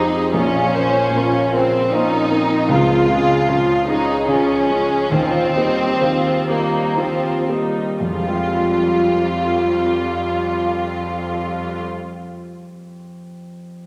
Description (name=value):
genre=cinematic, emotional film score for orchestra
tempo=56-78 BPM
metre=3/4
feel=rubato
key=F minor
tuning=A4 = 440 Hz
part: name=clear studio violin section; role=second line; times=0.0-11.8 s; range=Bb3 to F4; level=-21 LUFS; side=equal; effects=none
part: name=clear studio viola section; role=accompaniment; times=0.0-11.9 s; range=Db3 to C5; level=-26 LUFS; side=equal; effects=none
part: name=warm concert grand piano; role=accompaniment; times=0.0-13.9 s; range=Bb1 to G5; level=-26 LUFS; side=equal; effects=none
part: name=concert harp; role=arpeggios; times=0.0-12.2 s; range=Bb2 to G5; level=-28 LUFS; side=equal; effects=none
part: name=rich studio cello section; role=bass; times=0.0-11.8 s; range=F2 to Eb3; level=-30 LUFS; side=equal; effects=none
room=wet concert hall reverb, RT60 2.0 s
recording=none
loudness=-18 LUFS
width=mono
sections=0.0-8.0 A section; 8.0-11.1 B section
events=slowing down 1.5-8.0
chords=0.3 Bbmadd9; 2.7 Db; 5.1 Ebadd9; 8.0 Fmadd9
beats=| 0.33 1.13 1.92 | 2.69 3.48 4.28 | 5.12 6.01 6.96 | 8.00 9.03 10.06